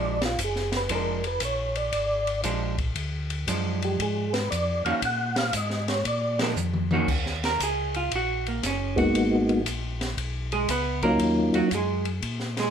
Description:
soul jazz organ trio; 117 BPM; 4/4; swing 67% on 8ths; Eb minor; A4 = 440 Hz
percussive tonewheel organ; melody; 0.0-11.7 s; Gb3 to Gb5; -26 LUFS; equal; slow rotary speaker, chorus vibrato, plate reverb
vintage hollow-body jazz guitar; accompaniment; 0.0-12.7 s; Eb3 to Cb5; -28 LUFS; right 4 dB
mellow tonewheel organ; bass; 0.0-12.7 s; F1 to Bb2; -30 LUFS; left 1 dB; chorus vibrato, slow rotary speaker
open jazz drum kit; drums; 0.2-12.7 s; crash cymbal, hi-hat, kick drum, ride cymbal, snare drum, toms; -30 LUFS; left 2 dB
moderate studio reverb, RT60 0.6 s; -24 LUFS; side -8 dB against mid
0.0-7.1 A section; 7.1-12.7 A section
tonewheel organ solo 0.0-7.1; drum fill 6.6-7.1; hollow-body jazz guitar solo 7.1-12.7
0.0 Bb7; 5.0 Ab7sus2; 6.0 Bb7; 7.1 Ebm7; 9.1 Abm7; 11.2 Ebm7

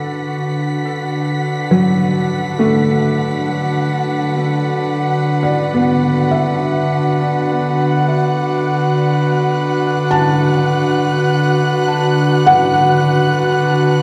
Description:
ambient; free time; D major; A4 = 441 Hz
airy breathy pad; sustained chords; 0.0-14.0 s; D3 to B4; -18 LUFS; equal; chorus
felt-muted upright piano; arpeggios; 0.0-14.0 s; F#3 to A5; -20 LUFS; equal; dub echo
warm studio violin section; texture; 0.0-14.0 s; F#5 to B6; -24 LUFS; equal
wet spring reverb, RT60 2.3 s; echo-heavy mix; -16 LUFS; mono
0.0-14.0 A section
fade-in on analog synth pad 0.0-14.0; fade-in on felt piano 0.0-14.0; fade-in on violin section 0.0-14.0
0.0 D6

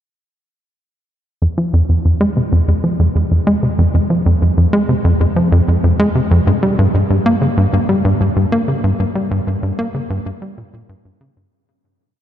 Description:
ambient; 95 BPM; 4/4; straight; F minor; A4 = 440 Hz
tight sequencer bass; solo; 1.4-11.5 s; F2 to Bb3; -13 LUFS; equal; ping-pong delay
wet huge ambient reverb, RT60 8.0 s; in a vast, echoing space; -13 LUFS; side -10 dB against mid
1.4-11.5 A section
fade-out 8.2-11.5

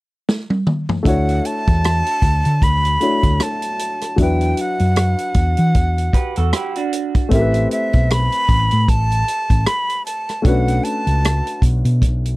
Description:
lush 1970s-style soul; 77 BPM; 4/4; swing 58% on 16ths; D major; A4 = 438 Hz
vintage drum kit; drums; 0.3-12.4 s; hi-hat, kick drum, rim click, snare drum, toms; -18 LUFS; equal
dark baby grand piano; accompaniment; 1.0-12.4 s; F#3 to C#5; -23 LUFS; left 2 dB
breathy bright jazz flute; melody; 1.1-11.6 s; E5 to B5; -21 LUFS; right 1 dB
hollow-body short-scale fingered electric bass; bass; 1.1-12.4 s; A1 to E3; -17 LUFS; equal
electric guitar through a small old amp; riff; 6.1-7.3 s; D4 to B4; -22 LUFS; right 7 dB; lush chorus
little or no reverb; dry, close 1970s-style studio recording; -15 LUFS; side -20 dB against mid
0.0-1.1 A section; 1.1-12.4 B section
drum fill 0.3-1.1
0.0 N.C.; 1.1 Dmaj7; 4.2 Esus2; 7.3 Am7; 10.4 Bm7

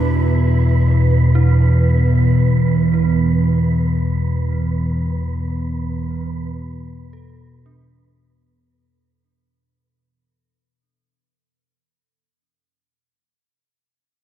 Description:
dark ambient drone; 57 BPM; 4/4; straight; A4 = 440 Hz
analog drone; drone; 0.0-8.8 s; E2 to B2; -15 LUFS; equal; chorus
wind-like tuned noise texture; texture; 0.0-8.7 s; B4; -29 LUFS; right 6 dB; built-in reverb
dark detuned synth bell; arpeggios; 1.4-13.5 s; D4 to A4; -35 LUFS; equal; chorus, tremolo, diffuse ambient delay
wet huge ambient reverb, RT60 7.7 s; dark, warm production; -14 LUFS; side -11 dB against mid
0.0-8.7 A section
fade-out on synth bell 0.0-8.7; filter sweep on synth drone 0.0-8.7; fade-out 3.1-8.7
0.0 E5

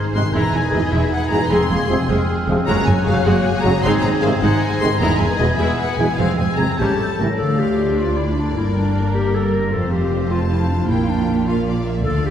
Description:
cinematic, heroic adventure film score; 103 BPM (dotted quarters); 6/8; straight; Bb lydian from 7.4 s; A4 = 440 Hz
clear symphonic violin section; second line; 0.0-12.3 s; E4 to A5; -30 LUFS; left 2 dB
mellow hollow flute section; second line; 0.0-7.2 s; F6 to Ab6; -28 LUFS; left 2 dB
warm clarinet; second line; 0.0-12.3 s; Bb3 to Bb4; -24 LUFS; left 1 dB
concert harp; arpeggios; 0.0-12.3 s; E2 to C6; -26 LUFS; left 4 dB
warm symphonic violin section; melody; 0.1-12.3 s; D5 to C6; -27 LUFS; left 3 dB
rich symphonic viola section; accompaniment; 0.1-12.3 s; G3 to Bb4; -24 LUFS; right 1 dB
dark French horn section; sustained chords; 0.1-7.3 s; Ab3 to G#4; -28 LUFS; left 2 dB
warm symphonic double bass section; bass; 0.1-12.3 s; E1 to D2; -22 LUFS; right 1 dB
mellow trombone section; sustained chords; 0.2-7.3 s; B2 to Gb3; -26 LUFS; right 2 dB
rich symphonic cello section; bass; 0.2-12.3 s; D2 to D3; -23 LUFS; right 2 dB
timpani; percussion; 10.9-11.4 s; Bb2; -28 LUFS; equal
wet concert hall reverb, RT60 1.9 s; heard from further back in the room; -16 LUFS; side -9 dB against mid
0.0-7.4 A section; 7.4-12.3 B section
0.3 E; 1.5 Fm; 2.7 Gbadd9; 3.8 Ab; 5.0 E; 6.2 Fm; 6.8 A7; 7.4 Dm; 8.6 Gm; 9.7 F; 10.9 Bb

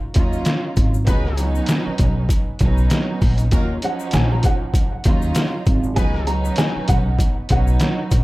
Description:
hip hop, boom-bap hip-hop; 98 BPM; 4/4; swing 57% on 16ths; A4 = 440 Hz
dark studio string section; accompaniment; 0.1-8.2 s; F3 to F4; -25 LUFS; right 2 dB; cassette tape
trip hop sampler-style drum kit; drums; 0.1-8.2 s; hi-hat, kick drum, snare drum; -19 LUFS; equal; overdrive
upright bass; bass; 0.2-8.2 s; Ab1 to Eb2; -20 LUFS; equal
egg shaker; percussion; 0.2-8.2 s; -40 LUFS; left 14 dB
mellow horn section; stabs; 1.1-6.4 s; Bb3 to Cb5; -35 LUFS; left 2 dB; tape echo
nylon-string guitar; melody; 3.8-8.0 s; Gb5 to Bb5; -27 LUFS; right 1 dB; tape echo
little or no reverb; dark, warm production; -16 LUFS; side -19 dB against mid
0.0-8.2 A section
0.0 Ebm9; 1.1 Db9sus4; 3.5 Ebm9; 6.0 Db9sus4

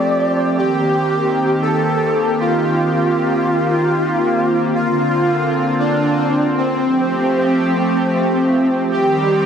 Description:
synthwave; 115 BPM; 4/4; straight; C dorian; A4 = 439 Hz
soft supersaw; melody; 0.0-9.5 s; C4 to D5; -17 LUFS; right 1 dB; tape echo
chorused pulse-width pad; sustained chords; 0.0-9.5 s; D3 to G4; -18 LUFS; equal
wet lush hall reverb, RT60 2.6 s; dense, heavily limited modern master; -14 LUFS; side -7 dB against mid
0.0-8.9 A section
0.0 Fadd9; 0.6 Cm7; 4.8 Bbadd9/D; 6.8 Fadd9; 8.9 Cm

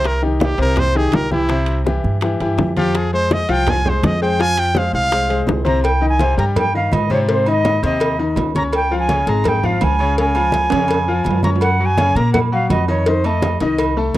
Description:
latin, salsa; 166 BPM; 4/4; straight; F minor; A4 = 444 Hz
brilliant trumpet; melody; 0.0-5.4 s; Eb4 to Ab5; -19 LUFS; right 1 dB
bright grand piano; accompaniment; 0.0-14.2 s; C3 to Db6; -20 LUFS; left 3 dB
upright bass; bass; 0.0-14.2 s; Ab1 to Bb2; -20 LUFS; right 1 dB
congas; percussion; 0.0-14.2 s; -23 LUFS; equal
timbales and agogo bells; percussion; 0.0-14.2 s; -25 LUFS; right 8 dB
bongos and cowbell; percussion; 0.1-14.2 s; -23 LUFS; left 3 dB
bright reedy jazz flute; melody; 5.7-14.0 s; C5 to Bb5; -20 LUFS; equal
little or no reverb; dry, close 1970s-style studio recording; -14 LUFS; side -15 dB against mid
0.0-5.8 A section; 5.8-14.2 B section
trumpet solo 0.0-5.8; drum fill 10.7-11.6
0.0 Cm; 1.5 C; 2.9 Fm; 5.8 Cm; 7.3 Ab; 8.7 Db; 11.6 Gb6; 13.1 F7

